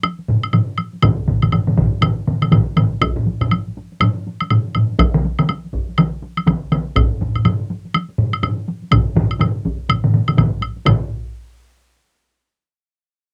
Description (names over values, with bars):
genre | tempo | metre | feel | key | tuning
japanese traditional, taiko drum ensemble | 122 BPM | 4/4 | swing 60% on 16ths | none | none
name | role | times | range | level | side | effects
taiko ensemble | percussion | 0.0-11.1 s | none | -25 LUFS | equal | none
woodblock | percussion | 0.0-11.1 s | none | -22 LUFS | equal | none
taiko ensemble | percussion | 0.3-11.3 s | none | -20 LUFS | equal | none
solo taiko drums | percussion | 1.0-11.3 s | none | -20 LUFS | equal | none
taiko ensemble | percussion | 1.0-11.1 s | none | -25 LUFS | equal | none
room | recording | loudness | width
moderate booth ambience, RT60 0.2 s | home recording on cassette | -18 LUFS | mono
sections
0.0-10.9 A section; 10.9-12.8 B section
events
speeding up 0.0-12.8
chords
none